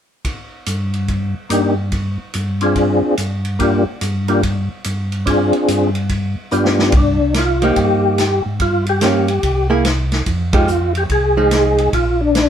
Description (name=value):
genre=soul jazz organ trio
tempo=144 BPM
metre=4/4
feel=swing 65% on 8ths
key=C minor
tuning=A4 = 439 Hz
part: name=vintage drum kit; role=drums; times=0.2-12.5 s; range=hi-hat, kick drum, ride cymbal, snare drum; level=-22 LUFS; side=equal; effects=none
part: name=mellow tonewheel organ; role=bass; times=0.7-12.5 s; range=Bb1 to Ab2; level=-19 LUFS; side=equal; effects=chorus vibrato, slow rotary speaker
part: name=percussive tonewheel organ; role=melody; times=1.5-12.5 s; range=Bb3 to Ab4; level=-16 LUFS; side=left 1 dB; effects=chorus vibrato, fast rotary speaker
part: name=archtop guitar, miked and amplified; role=accompaniment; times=7.6-11.9 s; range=F3 to Ab4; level=-18 LUFS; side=right 3 dB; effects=none
room=light reverb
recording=band playing live in one room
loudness=-14 LUFS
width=side -9 dB against mid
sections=0.2-6.9 A section; 6.9-12.5 B section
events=drum fill 6.5-6.9; band accent 10.5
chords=0.2 Gm; 6.9 Cm11; 8.6 Gm7b5; 9.4 C7b13; 10.3 Fm7; 11.9 Bb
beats=| 0.25 0.67 1.08 1.50 | 1.92 2.34 2.76 3.18 | 3.59 4.01 4.43 4.85 | 5.26 5.68 6.10 6.52 | 6.93 7.35 7.77 8.18 | 8.60 9.02 9.43 9.85 | 10.26 10.68 11.10 11.51 | 11.93 12.34